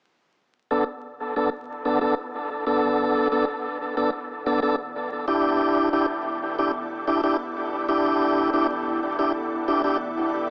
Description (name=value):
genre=ambient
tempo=92 BPM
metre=4/4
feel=straight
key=B minor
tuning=A4 = 440 Hz
part: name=soft additive organ-like pad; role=sustained chords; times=1.3-10.5 s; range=B3 to F#5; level=-36 LUFS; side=equal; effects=ensemble chorus, built-in reverb
part: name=tonewheel organ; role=stabs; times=0.7-10.0 s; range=B3 to A4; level=-24 LUFS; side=equal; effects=overdrive, fast rotary speaker, low-pass filter, dub echo
room=wet spring reverb, RT60 2.1 s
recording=echo-heavy mix, vinyl crackle, small speaker sound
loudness=-24 LUFS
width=mono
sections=0.4-10.5 A section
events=fade-in on ambient pad 0.4-10.5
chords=0.4 Bm7